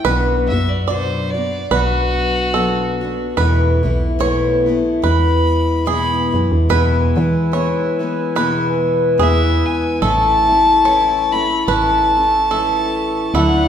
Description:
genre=acoustic folk duo or small band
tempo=72 BPM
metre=4/4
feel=swing 56% on 8ths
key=A major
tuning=A4 = 438 Hz
part: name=picked steel-string acoustic guitar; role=accompaniment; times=0.0-13.7 s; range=E2 to F#4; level=-19 LUFS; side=left 2 dB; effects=none
part: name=bluegrass banjo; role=arpeggios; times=0.0-13.7 s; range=E4 to D5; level=-22 LUFS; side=right 4 dB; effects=none
part: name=woody FM bass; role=bass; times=0.0-13.7 s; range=A1 to E3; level=-20 LUFS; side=right 1 dB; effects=none
part: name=warm fiddle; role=melody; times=0.5-13.7 s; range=F#4 to B5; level=-17 LUFS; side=left 1 dB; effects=none
part: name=mellow accordion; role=sustained chords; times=6.7-13.7 s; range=E4 to E6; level=-27 LUFS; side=equal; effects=none
room=wet recital hall reverb, RT60 1.7 s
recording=recorded in a church or concert hall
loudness=-14 LUFS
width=side -8 dB against mid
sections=0.0-6.7 A section; 6.7-10.0 B section; 10.0-13.7 C section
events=fiddle solo 0.0-6.7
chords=0.1 Bm; 3.4 Esus4; 5.0 E; 10.0 A

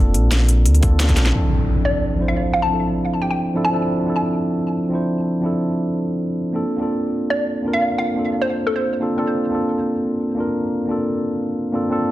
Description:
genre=liquid drum and bass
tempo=176 BPM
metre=4/4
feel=straight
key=D minor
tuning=A4 = 440 Hz
part: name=mellow tine electric piano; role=accompaniment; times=0.0-12.1 s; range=F3 to C5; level=-20 LUFS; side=equal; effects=tape echo
part: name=sub bass with octave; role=bass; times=0.0-1.3 s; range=F1 to D2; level=-14 LUFS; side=equal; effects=tube saturation
part: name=drum and bass drum kit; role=drums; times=0.1-1.3 s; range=hi-hat, snare drum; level=-23 LUFS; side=equal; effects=low-pass filter on hats, low-pass filter on snare
part: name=electronic kick drum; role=drums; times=0.8-1.2 s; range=none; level=-16 LUFS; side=equal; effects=none
part: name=impact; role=sound effects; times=1.3-2.7 s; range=none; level=-22 LUFS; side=equal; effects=none
part: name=hollow square pluck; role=melody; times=1.9-3.9, 7.3-9.1 s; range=A4 to A5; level=-22 LUFS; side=equal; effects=chorus, digital delay
room=light reverb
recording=dense, heavily limited modern master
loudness=-17 LUFS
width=side -15 dB against mid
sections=0.0-1.3 A section; 1.3-12.1 B section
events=drum fill 1.1; impact 1.3-2.7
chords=0.0 Bbmaj7; 1.3 Dm7; 6.6 Bbmaj7

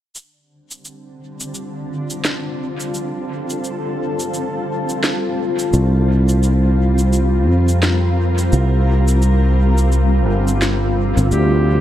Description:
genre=ambient dub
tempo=86 BPM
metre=4/4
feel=swing 59% on 16ths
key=unclear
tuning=A4 = 440 Hz
part: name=granular cloud pad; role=sustained chords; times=1.3-11.8 s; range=D3 to Bb4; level=-21 LUFS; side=left 1 dB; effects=built-in reverb
part: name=electronic cabasa and snare drum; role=drums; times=0.2-11.5 s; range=none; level=-24 LUFS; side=equal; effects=dub echo
part: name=fingered electric bass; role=bass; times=5.7-11.8 s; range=G1 to F2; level=-14 LUFS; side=equal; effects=tube saturation
part: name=clear clarinet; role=melody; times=11.3-11.8 s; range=G4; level=-20 LUFS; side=equal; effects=none
room=light reverb, digital ambience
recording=none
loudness=-15 LUFS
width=side -12 dB against mid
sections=0.2-11.3 A section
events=none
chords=0.2 Dm7; 5.7 C5

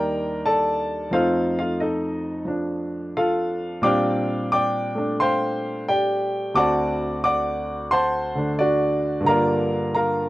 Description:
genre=solo jazz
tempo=88 BPM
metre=4/4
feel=swing 68% on 8ths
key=unclear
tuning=A4 = 440 Hz
part: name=clear grand piano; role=solo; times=0.0-10.3 s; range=D2 to D6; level=-20 LUFS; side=equal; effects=none
room=little or no reverb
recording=dark, warm production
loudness=-20 LUFS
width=side -17 dB against mid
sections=0.0-10.3 A section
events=none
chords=0.0 Ebmaj7; 1.1 F7; 3.8 Bb69; 6.5 D7; 9.3 Gm7

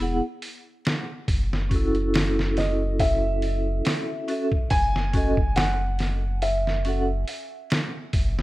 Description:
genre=trip hop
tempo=70 BPM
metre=4/4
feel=swing 55% on 16ths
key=F# dorian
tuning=A4 = 439 Hz
part: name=vibraphone with medium hard mallets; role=accompaniment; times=0.0-7.0 s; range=B3 to F#5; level=-28 LUFS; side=equal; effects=tremolo, low-pass filter, tape echo
part: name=warm sub bass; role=bass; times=0.0-8.4 s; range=E1 to F#1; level=-26 LUFS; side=equal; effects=none
part: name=trip hop sampler-style drum kit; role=drums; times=0.4-8.4 s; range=hi-hat, kick drum, snare drum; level=-26 LUFS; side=equal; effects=none
part: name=felt-muted upright piano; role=melody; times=2.6-7.2 s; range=D#5 to G#5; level=-28 LUFS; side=right 1 dB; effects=vintage 12-bit sampler grit, tape echo
room=little or no reverb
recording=rough home demo mix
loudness=-22 LUFS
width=side -18 dB against mid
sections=0.0-8.4 A section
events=none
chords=0.0 E; 1.3 F#m7

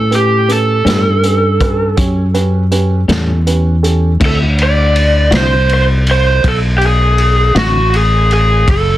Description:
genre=slow blues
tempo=54 BPM (dotted quarters)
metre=12/8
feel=straight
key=unclear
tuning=A4 = 439 Hz
part: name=lead guitar through a small cranked amp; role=melody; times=0.0-9.0 s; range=F#4 to D5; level=-14 LUFS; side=equal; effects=overdrive
part: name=dark upright piano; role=accompaniment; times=0.0-4.1 s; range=C#4 to C#5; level=-20 LUFS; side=right 4 dB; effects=none
part: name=fingered electric bass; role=bass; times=0.0-9.0 s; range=F#1 to A2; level=-12 LUFS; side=equal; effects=none
part: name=crunchy breakbeat drum kit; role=drums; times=0.1-8.9 s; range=crash cymbal, hi-hat, kick drum, ride cymbal, snare drum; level=-17 LUFS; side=equal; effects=none
part: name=clean electric guitar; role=accompaniment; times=0.8-7.8 s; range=A2 to F#4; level=-19 LUFS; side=left 3 dB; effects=tremolo
room=light reverb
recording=dense, heavily limited modern master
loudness=-9 LUFS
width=side -14 dB against mid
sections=0.0-4.2 A section; 4.2-9.0 B section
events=lead electric guitar solo 0.0-4.2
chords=0.0 A9; 4.2 D9

